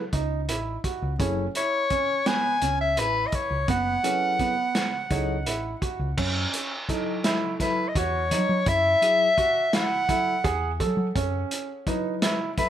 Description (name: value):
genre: progressive instrumental, band music in an uneven meter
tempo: 169 BPM (eighths)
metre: 7/8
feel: straight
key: F# dorian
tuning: A4 = 439 Hz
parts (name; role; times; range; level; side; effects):
- tine electric piano; accompaniment; 0.0-12.7 s; F#3 to C#5; -31 LUFS; left 3 dB; medium stereo tremolo
- warm grand piano; arpeggios; 0.1-12.7 s; B3 to A4; -30 LUFS; right 6 dB; tape echo
- hollow-body short-scale picked electric bass; bass; 0.1-11.4 s; F#1 to F#3; -28 LUFS; left 1 dB; none
- vintage drum kit; drums; 0.1-12.7 s; crash cymbal, hi-hat, kick drum, snare drum; -28 LUFS; equal; none
- warm soprano saxophone; melody; 1.6-12.7 s; B4 to G#5; -23 LUFS; left 1 dB; tape echo
room: moderate studio ambience, RT60 0.5 s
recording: none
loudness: -22 LUFS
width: side -10 dB against mid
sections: 0.0-6.2 A section; 6.2-12.7 B section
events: none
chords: 0.0 F#m11; 6.2 F#m7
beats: 0.13 0.49 0.84 | 1.20 1.56 1.91 2.27 2.62 2.98 3.33 | 3.69 4.04 4.40 4.76 5.11 5.47 5.82 | 6.18 6.54 6.89 7.25 7.60 7.96 8.31 | 8.67 9.03 9.38 9.74 10.09 10.45 10.80 | 11.16 11.51 11.87 12.22 12.58